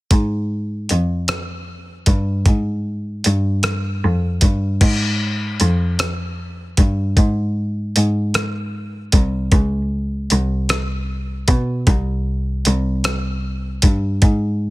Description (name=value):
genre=slow six-eight R&B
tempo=51 BPM (dotted quarters)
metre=6/8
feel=straight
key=Ab major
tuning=A4 = 440 Hz
part: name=warm cello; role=bass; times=0.1-14.7 s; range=C2 to B2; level=-19 LUFS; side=equal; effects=none
part: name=dusty soul sampler-style drum kit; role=drums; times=0.1-14.4 s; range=crash cymbal, hi-hat, kick drum, rim click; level=-17 LUFS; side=equal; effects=soft clipping on snare
room=little or no reverb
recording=dense, heavily limited modern master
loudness=-16 LUFS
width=side -19 dB against mid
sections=0.1-4.8 A section; 4.8-14.7 B section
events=none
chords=none